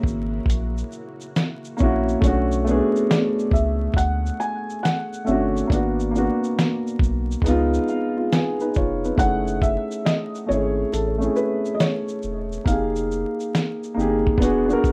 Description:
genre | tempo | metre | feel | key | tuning
lo-fi hip hop | 69 BPM | 4/4 | swing 65% on 16ths | F# dorian from 9.2 s | A4 = 440 Hz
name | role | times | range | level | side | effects
dark upright piano | accompaniment | 0.0-14.9 s | G#3 to G#5 | -25 LUFS | equal | low-pass filter
string machine, full ensemble | sustained chords | 0.0-2.2 s | C#3 to F#4 | -41 LUFS | equal | ensemble chorus, low-pass filter
soft dub sub bass | bass | 0.0-14.7 s | E1 to D2 | -28 LUFS | equal | none
lo-fi sampler-style drum kit | drums | 0.0-14.9 s | hi-hat, kick drum, shaker, snare drum | -25 LUFS | equal | none
felt-muted upright piano | melody | 3.1-14.4 s | A4 to G#5 | -30 LUFS | equal | low-pass filter, tape echo
room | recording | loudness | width
light reverb | rough home demo mix, vinyl crackle | -22 LUFS | mono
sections
0.0-9.2 A section; 9.2-14.9 B section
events
upright piano fill 7.4-9.2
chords
0.0 F#7; 2.2 Bm9; 5.7 G#m7b5; 7.4 C#7; 9.2 F#m9; 12.7 Fm11; 14.4 E9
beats
0.48 1.35 | 2.22 3.09 3.96 4.83 | 5.70 6.57 7.44 8.31 | 9.18 10.05 10.92 11.79 | 12.66 13.53 14.40

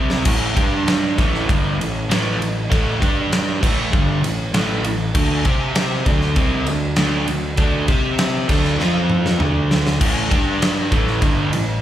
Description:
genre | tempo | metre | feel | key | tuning
hard rock | 99 BPM | 4/4 | straight | A minor | A4 = 439 Hz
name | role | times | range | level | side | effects
overdriven semi-hollow guitar | riff | 0.0-11.8 s | G2 to C5 | -21 LUFS | equal | none
fuzz picked electric bass | bass | 0.0-11.8 s | G1 to C3 | -22 LUFS | equal | overdrive
big rock drum kit | drums | 0.1-11.7 s | crash cymbal, kick drum, ride cymbal, snare drum, toms | -19 LUFS | equal | none
room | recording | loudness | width
small room ambience | live gig heard through the venue's PA, club reverb | -16 LUFS | side -12 dB against mid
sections
0.3-10.0 A section; 10.0-11.8 B section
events
drum fill 0.0, 8.8-10.0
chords
0.3 A5; 0.6 G5; 1.2 A5; 3.0 G5; 3.6 A5; 5.1 D5; 5.4 C5; 6.1 D5; 7.9 C5; 8.5 D5; 8.8 F5; 9.4 D5; 10.0 A5; 10.3 G5; 10.9 A5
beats
| 0.26 0.87 1.49 2.10 | 2.71 3.32 3.93 4.54 | 5.14 5.75 6.36 6.97 | 7.58 8.19 8.79 9.40 | 10.01 10.61 11.22

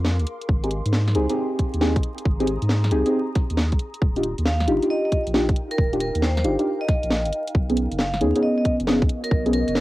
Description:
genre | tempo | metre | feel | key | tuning
UK garage, two-step garage | 136 BPM | 4/4 | swing 67% on 16ths | Eb major | A4 = 440 Hz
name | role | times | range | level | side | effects
saturated sub bass | bass | 0.0-9.8 s | Eb1 to Ab2 | -24 LUFS | equal | none
garage drum kit | drums | 0.0-9.8 s | hi-hat, snare drum | -26 LUFS | equal | cassette tape
ethereal airy pad | texture | 0.0-9.8 s | B3 to Eb6 | -35 LUFS | left 1 dB | ensemble chorus, built-in reverb, sidechain pumping, cassette tape
electronic kick drum | drums | 0.5-9.4 s | none | -21 LUFS | equal | cassette tape
deep mellow chord stab | stabs | 0.6-9.5 s | B3 to Ab4 | -23 LUFS | equal | chorus, phaser, cassette tape, tape echo
vibraphone with hard mallets | melody | 4.5-9.8 s | Bb4 to F5 | -28 LUFS | right 1 dB | cassette tape, tape echo
room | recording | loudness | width
moderate small room reverb, RT60 0.5 s | home recording on cassette, vinyl crackle | -19 LUFS | side -17 dB against mid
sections
0.0-9.8 A section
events
none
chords
0.5 Abmaj7; 4.0 Ebmaj9; 7.5 B69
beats
0.05 | 0.49 0.93 1.37 1.81 | 2.25 2.69 3.13 3.58 | 4.02 4.46 4.90 5.34 | 5.78 6.22 6.66 7.11 | 7.55 7.99 8.43 8.87 | 9.31 9.75

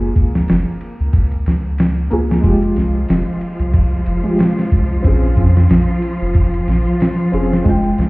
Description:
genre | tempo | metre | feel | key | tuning
trip hop | 92 BPM | 4/4 | swing 56% on 16ths | unclear | A4 = 440 Hz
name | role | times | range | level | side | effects
felt-muted upright piano | accompaniment | 0.0-8.1 s | Ab3 to G5 | -20 LUFS | equal | tremolo, low-pass filter, tape echo
soft dub sub bass | bass | 0.0-8.1 s | F1 to F2 | -16 LUFS | equal | none
dusty soul sampler-style drum kit | drums | 0.2-8.1 s | kick drum, ride cymbal, snare drum | -15 LUFS | equal | none
warm studio string section | sustained chords | 2.4-8.1 s | F3 to F4 | -21 LUFS | equal | vintage 12-bit sampler grit
room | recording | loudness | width
small room ambience | heard muffled through a wall, stone room reverb, vinyl crackle, EQ | -13 LUFS | side -22 dB against mid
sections
0.0-8.1 A section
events
none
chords
0.0 Gbmaj7 (rootless); 2.4 Fmadd9; 5.0 Bbm7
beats
0.48 1.13 1.78 | 2.44 3.09 3.74 4.39 | 5.05 5.70 6.35 7.00 | 7.66

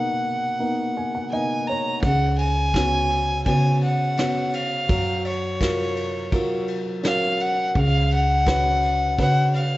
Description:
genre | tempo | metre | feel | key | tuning
folk | 84 BPM | 4/4 | straight | unclear | A4 = 440 Hz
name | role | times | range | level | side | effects
dark violin | melody | 0.0-9.8 s | C#5 to A#5 | -23 LUFS | left 1 dB | none
warm upright piano | accompaniment | 0.0-9.8 s | B2 to G#5 | -26 LUFS | equal | none
upright bass | bass | 2.0-9.8 s | C#2 to F#3 | -24 LUFS | equal | none
soft brush drum kit | drums | 2.0-9.7 s | kick drum, ride cymbal, snare drum | -28 LUFS | equal | none
room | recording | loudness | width
light reverb | worn, warbling old tape, cassette tape, warbly pitch drift, nothing above 7.9 kHz | -19 LUFS | side -17 dB against mid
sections
0.0-2.0 A section; 2.0-9.8 B section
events
none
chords
0.0 Bmaj7; 2.0 C#7sus4; 4.9 F#maj7; 7.8 C#7sus4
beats
0.59 1.31 | 2.03 2.74 3.46 4.17 | 4.89 5.60 6.32 7.04 | 7.75 8.46 9.18

